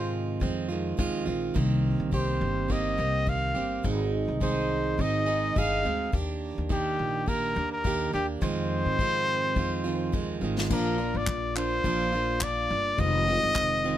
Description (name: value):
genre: acoustic pop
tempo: 105 BPM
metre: 4/4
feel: swing 55% on 16ths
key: unclear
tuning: A4 = 440 Hz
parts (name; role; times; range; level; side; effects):
- clear trumpet; melody; 0.0-14.0 s; G4 to F5; -28 LUFS; left 2 dB; none
- picked plugged-in steel-string acoustic guitar; accompaniment; 0.0-14.0 s; F2 to Ab4; -30 LUFS; right 5 dB; none
- upright bass; bass; 0.0-14.0 s; F1 to Ab2; -31 LUFS; left 1 dB; none
- unplugged drum kit; drums; 0.4-13.7 s; crash cymbal, handclaps, kick drum, snare drum; -31 LUFS; left 1 dB; none
- reed electric piano; accompaniment; 10.7-14.0 s; Ab3 to D5; -36 LUFS; left 6 dB; none
room: light reverb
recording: close, detailed microphones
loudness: -25 LUFS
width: side -12 dB against mid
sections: 0.0-10.7 A section; 10.7-14.0 B section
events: drum fill 9.6-10.7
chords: 0.0 Fm7; 1.6 Cm7; 3.8 Ab; 6.1 Ebmaj7; 8.4 Fm7; 10.7 Bb; 13.0 Fm7